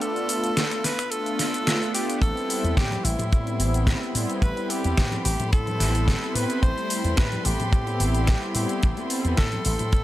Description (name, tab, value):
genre	nu-disco, nu disco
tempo	109 BPM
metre	4/4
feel	straight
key	A minor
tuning	A4 = 440 Hz
part	bright tenor saxophone	melody	0.0-10.0 s	E4 to C5	-30 LUFS	equal	tape echo
part	warm analog pad	accompaniment	0.0-10.0 s	G3 to F4	-29 LUFS	equal	chorus, cassette tape, sidechain pumping
part	pop drum kit	drums	0.0-10.0 s	finger snaps, hi-hat, shaker, snare drum	-28 LUFS	equal	overdrive
part	warm studio violin section	sustained chords	2.2-10.0 s	A4 to C6	-36 LUFS	equal	sidechain pumping
part	slap bass with an envelope filter	bass	2.2-10.0 s	A1 to A2	-26 LUFS	equal	tube saturation
part	kick drum	drums	2.2-10.0 s	none	-20 LUFS	equal	none
part	bongos and congas	percussion	2.4-9.9 s	none	-37 LUFS	left 4 dB	none
room	little or no reverb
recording	none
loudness	-21 LUFS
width	side -15 dB against mid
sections	0.0-10.0 A section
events	break 0.0-2.2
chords	0.0 G9 (rootless); 2.2 Am9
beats	| 0.02 0.57 1.12 1.67 | 2.23 2.77 3.33 3.88 | 4.43 4.98 5.53 6.08 | 6.63 7.18 7.73 8.28 | 8.83 9.38 9.93